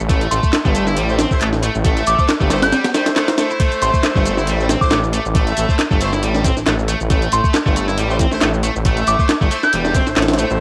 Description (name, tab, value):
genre	breakbeat, breaks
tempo	137 BPM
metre	4/4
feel	swing 55% on 16ths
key	A minor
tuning	A4 = 440 Hz
part	detuned saw bass	bass	0.0-10.6 s	E1 to A1	-21 LUFS	equal	none
part	electronic shaker and handclaps	drums	0.0-10.6 s	none	-28 LUFS	equal	cassette tape
part	overdriven electric guitar	riff	0.1-10.5 s	G3 to E4	-25 LUFS	equal	cassette tape, analog delay
part	breakbeat sampler-style drum kit	drums	0.1-10.5 s	hi-hat, kick drum, snare drum	-20 LUFS	equal	cassette tape
part	soft synth bell	melody	0.3-10.1 s	C6 to G6	-23 LUFS	equal	chorus, phaser, AM radio sound, vintage 12-bit sampler grit, cassette tape, analog delay
part	bright horn section	stabs	1.1-10.6 s	A3 to E5	-27 LUFS	equal	cassette tape, analog delay
room	light reverb, digital ambience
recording	home recording on cassette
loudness	-16 LUFS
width	mono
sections	0.0-10.6 A section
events	none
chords	0.0 Am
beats	| 0.10 0.54 0.97 1.41 | 1.85 2.29 2.73 3.16 | 3.60 4.04 4.48 4.91 | 5.35 5.79 6.23 6.67 | 7.10 7.54 7.98 8.42 | 8.86 9.29 9.73 10.17